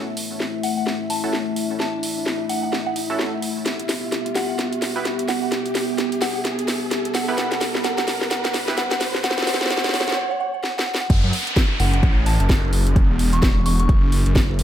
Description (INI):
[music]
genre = bass house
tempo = 129 BPM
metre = 4/4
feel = swing 59% on 16ths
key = F# phrygian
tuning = A4 = 440 Hz
[part]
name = dark analog pad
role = sustained chords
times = 0.0-10.1 s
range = A3 to E5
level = -26 LUFS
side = left 1 dB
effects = chorus, sidechain pumping
[part]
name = band-passed chord stab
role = stabs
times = 0.0-8.8 s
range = B3 to B4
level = -30 LUFS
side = right 3 dB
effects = chorus, cassette tape, sidechain pumping, digital delay
[part]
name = riser and downlifter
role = sound effects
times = 0.1-14.6 s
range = none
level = -30 LUFS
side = right 1 dB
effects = none
[part]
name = house drum kit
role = drums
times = 0.2-14.6 s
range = crash cymbal, hi-hat, snare drum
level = -24 LUFS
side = equal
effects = high-pass filter on hats, high-pass filter on snare, high-pass filter on cymbals
[part]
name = soft synth bell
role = melody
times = 0.6-13.9 s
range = F#5 to C#6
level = -28 LUFS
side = equal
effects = chorus, phaser, digital delay
[part]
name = phased detuned saw bass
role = bass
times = 11.1-14.6 s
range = E1 to F#2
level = -18 LUFS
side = equal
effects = phaser, overdrive, sidechain pumping
[part]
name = electronic kick drum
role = drums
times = 11.1-14.5 s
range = none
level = -17 LUFS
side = equal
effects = none
[sound]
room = light reverb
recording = none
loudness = -19 LUFS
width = side -11 dB against mid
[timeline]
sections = 0.0-11.1 A section; 11.1-14.6 B section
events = build-up 0.0-11.1; drum fill 0.0-10.2, 10.6-11.1; riser 0.1-10.2; break 10.2-11.1; drop 11.1-14.6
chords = 0.0 F#m7; 3.7 Em; 11.1 F#m7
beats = 0.40 0.87 1.33 | 1.80 2.26 2.73 3.19 | 3.66 4.12 4.59 5.05 | 5.52 5.98 6.45 6.91 | 7.38 7.84 8.31 8.77 | 9.24 9.71 10.17 10.63 | 11.10 11.56 12.03 12.49 | 12.96 13.43 13.89 14.36